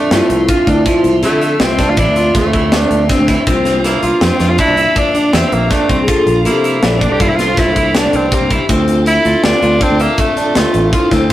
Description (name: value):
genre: progressive instrumental, band music in an uneven meter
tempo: 161 BPM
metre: 7/4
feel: straight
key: unclear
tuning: A4 = 440 Hz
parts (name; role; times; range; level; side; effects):
- edgy tenor saxophone; melody; 0.0-10.9 s; A3 to G4; -17 LUFS; equal; slapback echo
- vibraphone with soft mallets; second line; 0.0-11.3 s; D4 to A4; -20 LUFS; left 2 dB; none
- tonewheel organ; accompaniment; 0.0-11.3 s; F3 to E5; -22 LUFS; equal; slow rotary speaker
- electric guitar at the edge of break-up; arpeggios; 0.0-11.3 s; F3 to E5; -16 LUFS; right 1 dB; spring reverb
- modern bright fingered electric bass; bass; 0.1-11.3 s; A1 to D3; -17 LUFS; equal; none
- tight metal drum kit; drums; 0.1-11.3 s; hi-hat, kick drum, snare drum; -17 LUFS; equal; none
- egg shaker; percussion; 0.1-10.7 s; none; -36 LUFS; right 4 dB; none
room: wet studio reverb, RT60 0.5 s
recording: rough rehearsal-room recording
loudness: -10 LUFS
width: side -14 dB against mid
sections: 0.0-11.3 A section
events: none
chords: 0.0 Dm7; 3.5 C7sus4; 8.7 Bbmaj9 (rootless)